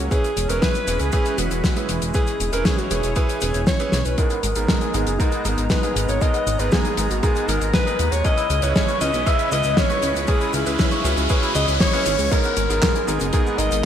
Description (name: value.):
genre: italo disco.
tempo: 118 BPM.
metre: 4/4.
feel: straight.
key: G# minor.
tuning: A4 = 440 Hz.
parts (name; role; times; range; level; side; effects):
lush unison pad; sustained chords; 0.0-13.9 s; G#3 to A#5; -29 LUFS; right 1 dB; chorus, phaser.
bright concert grand piano; stabs; 0.0-13.8 s; G#2 to B4; -28 LUFS; right 3 dB; low-pass filter.
chorused synth bass; bass; 0.0-13.8 s; E1 to D#2; -24 LUFS; equal; none.
warm alto saxophone; melody; 0.1-13.9 s; D#4 to E5; -24 LUFS; equal; low-pass filter, ping-pong delay.
damped 70s drum kit; drums; 0.1-13.8 s; cabasa, crash cymbal, handclaps, hi-hat, snare drum; -25 LUFS; left 1 dB; gated reverb.
electronic kick drum; drums; 0.1-13.4 s; none; -22 LUFS; equal; none.
electric guitar with an envelope filter; arpeggios; 4.2-13.6 s; G#3 to C#5; -30 LUFS; left 2 dB; spring reverb, low-pass filter, ping-pong delay.
riser; sound effects; 7.8-12.3 s; none; -31 LUFS; left 1 dB; none.
room: moderate lush hall reverb, RT60 2.4 s.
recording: bright 1980s-style digital production.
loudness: -18 LUFS.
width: side -9 dB against mid.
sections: 0.0-4.2 A section; 4.2-12.3 B section; 12.3-13.9 C section.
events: drum fill 3.9; filter sweep on alto saxophone 4.2-12.3; riser 7.8-12.3.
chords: 0.1 E6; 4.2 G#madd9; 8.2 C#m7; 12.3 G#madd9.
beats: | 0.11 0.62 1.13 1.64 | 2.15 2.65 3.16 3.67 | 4.18 4.69 5.20 5.71 | 6.21 6.72 7.23 7.74 | 8.25 8.76 9.26 9.77 | 10.28 10.79 11.30 11.81 | 12.31 12.82 13.33 13.84.